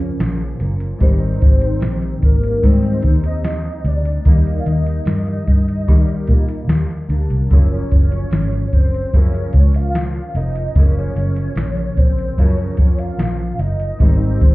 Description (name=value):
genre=indie pop, bedroom pop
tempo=74 BPM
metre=4/4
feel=straight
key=unclear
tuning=A4 = 442 Hz
part: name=soft octave-layered synth lead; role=melody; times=0.0-14.5 s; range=Bb4 to F5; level=-27 LUFS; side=equal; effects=phaser, ensemble chorus, tape echo
part: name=fingerpicked steel-string acoustic guitar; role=accompaniment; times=0.0-14.5 s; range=Gb2 to Eb4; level=-25 LUFS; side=left 2 dB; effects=ensemble chorus, vibrato effect
part: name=vintage muted fingered electric bass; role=bass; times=0.0-14.5 s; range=F1 to Eb3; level=-18 LUFS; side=equal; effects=none
part: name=soft vintage rhythm box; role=drums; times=0.2-14.5 s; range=hi-hat, kick drum, snare drum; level=-14 LUFS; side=equal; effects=none
room=digital ambience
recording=heard muffled through a wall, club reverb, EQ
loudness=-14 LUFS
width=side -19 dB against mid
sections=0.0-14.5 A section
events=none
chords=0.0 Gbmaj7; 1.0 Abmaj7; 4.3 Ebmaj7; 7.5 Gbmaj7; 14.0 Abmaj7